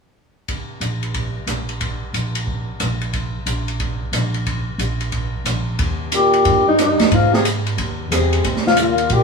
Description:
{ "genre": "jazz, small-group swing and bop", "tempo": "181 BPM", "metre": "4/4", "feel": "swing 64% on 8ths", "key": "Eb major", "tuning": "A4 = 440 Hz", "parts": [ { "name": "open jazz drum kit", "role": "drums", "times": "0.5-9.2 s", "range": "hi-hat, kick drum, ride cymbal, rim click, snare drum", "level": "-22 LUFS", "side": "right 1 dB", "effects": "none" }, { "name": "upright bass", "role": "bass", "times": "0.8-9.2 s", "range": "Bb1 to Bb2", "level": "-22 LUFS", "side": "right 1 dB", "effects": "none" }, { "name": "growling trombone", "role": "second line", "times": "6.1-9.2 s", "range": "G2 to C3", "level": "-23 LUFS", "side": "right 2 dB", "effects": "none" }, { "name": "dark alto saxophone", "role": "melody", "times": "6.2-9.2 s", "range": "Eb4 to Ab4", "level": "-16 LUFS", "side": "left 3 dB", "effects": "none" } ], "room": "moderate stone room reverb, RT60 0.9 s", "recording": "band playing live in one room", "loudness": "-17 LUFS", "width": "side -4 dB against mid", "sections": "0.5-5.8 A section; 5.8-9.2 B section", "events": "none", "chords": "0.5 N.C.; 5.8 Eb; 7.1 Ab; 8.4 Ebsus2" }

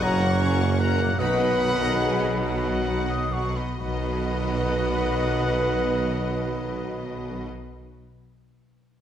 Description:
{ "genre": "cinematic", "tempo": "123-157 BPM", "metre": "3/4", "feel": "straight", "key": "B major", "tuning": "A4 = 441 Hz", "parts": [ { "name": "rich symphonic violin section", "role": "melody", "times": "0.0-7.5 s", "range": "D#5 to A#5", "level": "-35 LUFS", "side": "left 4 dB", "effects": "none" }, { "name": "dark clarinet", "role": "second line", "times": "0.0-7.5 s", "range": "B4 to F#5", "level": "-36 LUFS", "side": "equal", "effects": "none" }, { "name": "hollow concert flute", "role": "second line", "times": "0.0-7.5 s", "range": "A#5 to D#6", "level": "-36 LUFS", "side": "left 2 dB", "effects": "none" }, { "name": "warm oboe", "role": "second line", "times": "0.0-7.5 s", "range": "D#5 to A#5", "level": "-36 LUFS", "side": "equal", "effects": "none" }, { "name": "warm symphonic violin section", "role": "second line", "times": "0.0-7.5 s", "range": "D#4 to C#6", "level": "-39 LUFS", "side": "left 3 dB", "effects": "none" }, { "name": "warm symphonic viola section", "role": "accompaniment", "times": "0.0-7.5 s", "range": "A#3 to A#4", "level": "-35 LUFS", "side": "equal", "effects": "none" }, { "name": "mellow French horn section", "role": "sustained chords", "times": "0.0-7.5 s", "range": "F#4 to C#5", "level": "-30 LUFS", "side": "left 3 dB", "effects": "none" }, { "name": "mellow trombone section", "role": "sustained chords", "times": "0.0-7.5 s", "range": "D#3 to B3", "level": "-36 LUFS", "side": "right 3 dB", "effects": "none" }, { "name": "concert harp", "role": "arpeggios", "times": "0.0-8.3 s", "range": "F#2 to D#5", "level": "-38 LUFS", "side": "left 7 dB", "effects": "none" }, { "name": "warm trumpet", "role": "stabs", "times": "0.0-7.5 s", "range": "F#5", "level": "-33 LUFS", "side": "equal", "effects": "none" }, { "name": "mellow tuba", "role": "bass", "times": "0.0-7.5 s", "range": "F#1 to B1", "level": "-29 LUFS", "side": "right 3 dB", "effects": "none" }, { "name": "rich symphonic cello section", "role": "bass", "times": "0.0-7.5 s", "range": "F#2 to B2", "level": "-31 LUFS", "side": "right 2 dB", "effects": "none" }, { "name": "rich symphonic double bass section", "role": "bass", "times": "0.0-7.5 s", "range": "F#1 to B1", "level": "-30 LUFS", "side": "right 2 dB", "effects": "none" } ], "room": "wet scoring stage reverb, RT60 1.6 s", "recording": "none", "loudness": "-22 LUFS", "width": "side -9 dB against mid", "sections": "0.0-3.8 A section; 3.8-6.7 B section", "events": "slowing down 0.6-3.8", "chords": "0.0 F#; 1.2 B" }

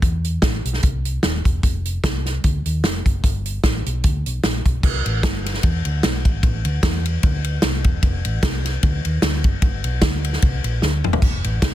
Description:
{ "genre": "uptempo gospel", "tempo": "150 BPM", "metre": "4/4", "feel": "swing 55% on 8ths", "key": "C major", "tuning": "A4 = 440 Hz", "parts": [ { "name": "hollow-body short-scale fingered electric bass", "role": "bass", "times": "0.0-11.7 s", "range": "Eb1 to E2", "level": "-22 LUFS", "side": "equal", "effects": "none" }, { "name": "natural country drum kit", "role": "drums", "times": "0.0-11.7 s", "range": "crash cymbal, hi-hat, kick drum, ride cymbal, snare drum, splash cymbal, toms", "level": "-19 LUFS", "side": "equal", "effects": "none" } ], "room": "little or no reverb", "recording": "dense, heavily limited modern master", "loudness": "-18 LUFS", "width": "side -13 dB against mid", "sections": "0.0-4.8 A section; 4.8-11.7 B section", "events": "drum fill 10.8-11.2", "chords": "none" }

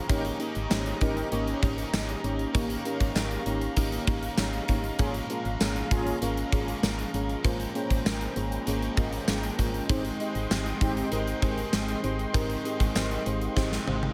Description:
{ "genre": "1980s-style pop", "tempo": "98 BPM", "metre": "4/4", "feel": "straight", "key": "unclear", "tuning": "A4 = 444 Hz", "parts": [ { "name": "FM electric piano with soft pad layer", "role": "accompaniment", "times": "0.0-14.1 s", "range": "Ab2 to C6", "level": "-35 LUFS", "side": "equal", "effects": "chorus, tremolo" }, { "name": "cranked stack guitar", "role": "accompaniment", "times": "0.0-14.1 s", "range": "Ab2 to Eb4", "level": "-41 LUFS", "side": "equal", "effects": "overdrive, ensemble chorus" }, { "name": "warm analog pad", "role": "sustained chords", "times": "0.0-14.1 s", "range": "Ab3 to C6", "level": "-38 LUFS", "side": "equal", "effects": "chorus" }, { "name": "mellow synth brass", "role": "stabs", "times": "0.1-1.3, 5.0-6.2, 9.9-11.1 s", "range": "C4 to Bb4", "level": "-39 LUFS", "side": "equal", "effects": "chorus, tape echo" }, { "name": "solid FM bass", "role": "bass", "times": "0.1-14.1 s", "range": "Ab1", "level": "-35 LUFS", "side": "equal", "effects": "none" }, { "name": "gated 80s drum kit", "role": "drums", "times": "0.1-14.1 s", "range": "hi-hat, kick drum, snare drum, tambourine, toms", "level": "-31 LUFS", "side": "equal", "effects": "none" } ], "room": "light reverb, studio ambience", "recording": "none", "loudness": "-28 LUFS", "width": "mono", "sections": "0.0-14.1 A section", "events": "FM electric piano fill 13.0-14.1; drum fill 13.6-14.1", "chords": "0.1 Eb7/Ab; 9.9 Abmaj7" }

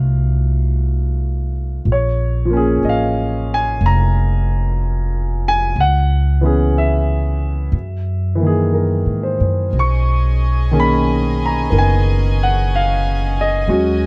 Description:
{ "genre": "jazz ballad", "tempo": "61 BPM", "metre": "4/4", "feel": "swing 67% on 8ths", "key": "unclear", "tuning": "A4 = 442 Hz", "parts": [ { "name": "warm grand piano", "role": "accompaniment", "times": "0.0-14.1 s", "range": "Eb3 to Db6", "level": "-21 LUFS", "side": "equal", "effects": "none" }, { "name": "upright bass", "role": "bass", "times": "0.0-14.1 s", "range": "F1 to Ab2", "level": "-19 LUFS", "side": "equal", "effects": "none" }, { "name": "warm chamber string section", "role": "sustained chords", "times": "9.7-14.1 s", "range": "Db4 to Ab5", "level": "-30 LUFS", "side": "equal", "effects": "none" } ], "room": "little or no reverb", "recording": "close, detailed microphones", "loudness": "-17 LUFS", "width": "mono", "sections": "0.0-14.1 A section", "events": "none", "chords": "0.0 F7b9; 1.9 Bbm7; 5.8 Dbm7; 7.7 Gb13; 9.7 Cbmaj13" }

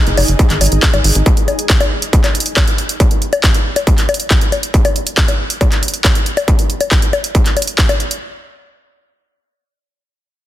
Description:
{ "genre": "psychedelic trance", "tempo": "138 BPM", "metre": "4/4", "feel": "straight", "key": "unclear", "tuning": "A4 = 440 Hz", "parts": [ { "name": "granular cloud pad", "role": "texture", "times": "0.0-1.3 s", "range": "D#4 to D#5", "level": "-24 LUFS", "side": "right 1 dB", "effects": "built-in reverb, sidechain pumping" }, { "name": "tight sequencer bass", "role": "bass", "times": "0.1-1.2 s", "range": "F#1 to G#1", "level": "-14 LUFS", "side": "equal", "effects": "none" }, { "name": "drum and bass drum kit", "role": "drums", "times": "0.1-8.2 s", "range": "bongos, handclaps, hi-hat", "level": "-16 LUFS", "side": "left 2 dB", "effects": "overdrive" }, { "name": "electronic kick drum", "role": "drums", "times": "0.4-7.9 s", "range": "none", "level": "-13 LUFS", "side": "equal", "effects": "distortion" } ], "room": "little or no reverb", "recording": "dense, heavily limited modern master", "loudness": "-11 LUFS", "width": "side -13 dB against mid", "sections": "0.0-8.2 A section", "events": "none", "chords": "0.0 G#5" }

